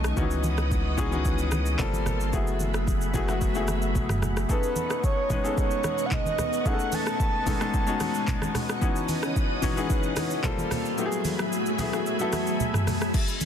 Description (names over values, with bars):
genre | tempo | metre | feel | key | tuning
amapiano | 111 BPM | 4/4 | straight | unclear | A4 = 438 Hz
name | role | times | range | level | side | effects
clear grand piano | accompaniment | 0.0-13.2 s | D#3 to B4 | -29 LUFS | left 4 dB | none
string machine, full ensemble | sustained chords | 0.0-13.5 s | F#3 to D#6 | -32 LUFS | right 1 dB | ensemble chorus, sidechain pumping
saturated sub bass | bass | 0.0-4.5 s | F#1 to C#2 | -28 LUFS | equal | none
afro-pop drum kit | drums | 0.0-13.5 s | crash cymbal, handclaps, hi-hat, kick drum, rim click, shaker, toms | -28 LUFS | equal | overdrive
congas | percussion | 0.4-13.5 s | none | -34 LUFS | right 2 dB | none
breathy flute-like synth lead | melody | 4.5-8.6 s | B4 to A5 | -31 LUFS | right 2 dB | chorus, tremolo, ping-pong delay
room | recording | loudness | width
little or no reverb | dense, heavily limited modern master | -24 LUFS | side -8 dB against mid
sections
0.0-13.1 A section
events
kick muted 11.0-13.1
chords
0.2 C#m11; 1.8 Gm11; 2.3 F#m11; 4.5 B13; 8.8 C#m11; 10.4 Gm11; 11.0 F#m11